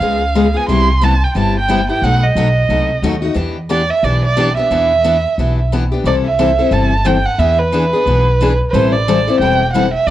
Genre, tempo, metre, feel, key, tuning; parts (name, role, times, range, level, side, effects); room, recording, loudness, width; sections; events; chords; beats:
acoustic string swing (jazz manouche); 179 BPM; 4/4; swing 59% on 8ths; E minor; A4 = 440 Hz
rich violin; melody; 0.0-10.1 s; B4 to C6; -16 LUFS; right 3 dB; plate reverb
picked steel-string acoustic guitar; accompaniment; 0.0-10.1 s; B2 to A4; -17 LUFS; left 4 dB
upright bass; bass; 0.0-10.1 s; E1 to E2; -17 LUFS; equal; transformer saturation
light reverb; worn, warbling old tape, cassette tape, warbly pitch drift; -12 LUFS; side -13 dB against mid
0.0-6.1 A section; 6.1-10.1 B section
0.0 C#7; 0.7 Cmaj7; 2.0 B7; 3.4 Em7; 6.1 C6; 7.4 E7; 8.7 Am7
0.01 0.35 | 0.69 1.02 1.36 1.69 | 2.03 2.36 2.70 3.03 | 3.37 3.71 4.04 4.38 | 4.71 5.05 5.38 5.72 | 6.05 6.39 6.72 7.06 | 7.39 7.73 8.06 8.40 | 8.73 9.07 9.40 9.74 | 10.07